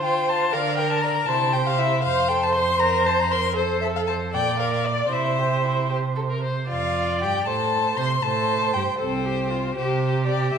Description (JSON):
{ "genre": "quick classical-period movement for string quartet", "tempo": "78 BPM (dotted quarters)", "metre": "6/8", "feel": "straight", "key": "F major", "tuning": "A4 = 441 Hz", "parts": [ { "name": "warm violin", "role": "melody", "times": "0.0-10.6 s", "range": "C5 to C6", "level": "-25 LUFS", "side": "left 8 dB", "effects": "none" }, { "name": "rich violin", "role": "second line", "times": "0.0-10.6 s", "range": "C4 to D5", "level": "-29 LUFS", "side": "left 2 dB", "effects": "none" }, { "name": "warm viola", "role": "accompaniment", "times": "0.0-10.6 s", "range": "F4 to D5", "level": "-25 LUFS", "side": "right 4 dB", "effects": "none" }, { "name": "warm cello", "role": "bass", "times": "0.0-10.6 s", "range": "C2 to D3", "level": "-27 LUFS", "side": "right 4 dB", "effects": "none" } ], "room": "wet recital hall reverb, RT60 1.6 s", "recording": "minimal, uncompressed stereo recording", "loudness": "-20 LUFS", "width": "side -7 dB against mid", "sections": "0.0-6.7 A section; 6.7-10.6 B section", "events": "none", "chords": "0.0 Dm; 0.5 Bb/D; 1.3 C; 2.0 F; 4.3 Bb; 5.1 C; 6.7 F; 8.2 C5; 9.0 Fadd9/C; 9.8 C5" }